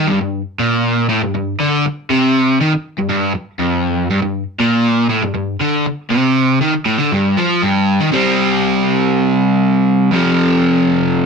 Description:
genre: rock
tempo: 119 BPM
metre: 4/4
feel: straight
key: G minor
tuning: A4 = 440 Hz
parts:
  - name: crunchy overdriven guitar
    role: solo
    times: 0.0-11.3 s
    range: F2 to C4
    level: -13 LUFS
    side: equal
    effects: none
room: moderate small room reverb, RT60 0.6 s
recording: band playing live in one room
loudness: -13 LUFS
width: side -5 dB against mid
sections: 0.0-8.1 A section; 8.1-11.3 B section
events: none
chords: 0.0 Gm; 8.1 C5; 10.1 F5

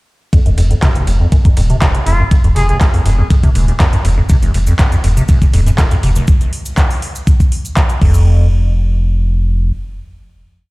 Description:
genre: acid house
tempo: 121 BPM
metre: 4/4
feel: straight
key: F phrygian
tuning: A4 = 437 Hz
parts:
  - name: liquid acid bass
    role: riff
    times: 0.3-8.5 s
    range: F1 to C3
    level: -15 LUFS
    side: equal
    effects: tube saturation, wide subtle chorus, dub echo
  - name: booming analog drum machine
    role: drums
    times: 0.3-8.1 s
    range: crash cymbal, handclaps, hi-hat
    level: -23 LUFS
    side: equal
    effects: overdrive
  - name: dusty soul sampler-style drum kit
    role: drums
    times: 0.3-6.2 s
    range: ride cymbal, snare drum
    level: -29 LUFS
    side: right 1 dB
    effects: high-pass filter on cymbals, high-pass filter on snare, high-pass filter on room
  - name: electronic kick drum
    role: drums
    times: 0.3-8.1 s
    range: none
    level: -10 LUFS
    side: equal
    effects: none
  - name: saturated sub bass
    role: bass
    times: 0.5-9.7 s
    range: Eb1 to F1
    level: -13 LUFS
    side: equal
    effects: tube saturation, sidechain pumping
  - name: trumpet with straight mute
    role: melody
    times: 2.1-2.8 s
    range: F4 to Ab4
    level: -21 LUFS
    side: equal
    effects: digital delay
  - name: cabasa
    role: percussion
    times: 4.3-8.2 s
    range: none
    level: -32 LUFS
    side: equal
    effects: none
room: little or no reverb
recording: played on a big sound system in a bare room, large studio reverb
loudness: -10 LUFS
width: side -22 dB against mid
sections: 0.3-8.3 groove; 8.3-10.7 final hit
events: filter sweep on acid bass 0.3-6.3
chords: 0.3 F5; 8.0 N.C.

